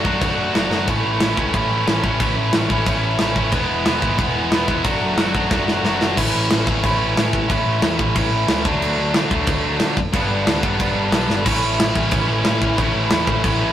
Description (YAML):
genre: punk rock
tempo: 182 BPM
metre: 4/4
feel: straight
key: A major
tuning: A4 = 441 Hz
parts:
  - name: distorted electric guitar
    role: riff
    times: 0.0-13.7 s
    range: G2 to F#4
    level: -22 LUFS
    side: right 5 dB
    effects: overdrive
  - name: high-gain distorted guitar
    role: riff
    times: 0.0-6.2, 11.4-13.7 s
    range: A2 to F#4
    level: -28 LUFS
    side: left 2 dB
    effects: none
  - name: tight distorted guitar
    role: riff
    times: 0.0-13.7 s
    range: G2 to F#4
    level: -23 LUFS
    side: left 5 dB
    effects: distortion
  - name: overdriven picked electric bass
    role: bass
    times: 0.0-13.7 s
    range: E1 to D3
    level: -24 LUFS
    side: equal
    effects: none
  - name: tight metal drum kit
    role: drums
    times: 0.0-13.5 s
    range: crash cymbal, kick drum, snare drum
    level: -21 LUFS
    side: equal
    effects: none
room: moderate stone room reverb, RT60 1.3 s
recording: rough rehearsal-room recording, warm saturation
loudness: -16 LUFS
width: side -11 dB against mid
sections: 0.0-6.2 A section; 6.2-13.7 B section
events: drum fill 0.7, 5.5-6.2, 11.3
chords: 0.0 D/F#; 0.9 A; 3.5 E; 4.9 D/F#; 6.2 A; 8.7 D; 10.1 G; 11.5 A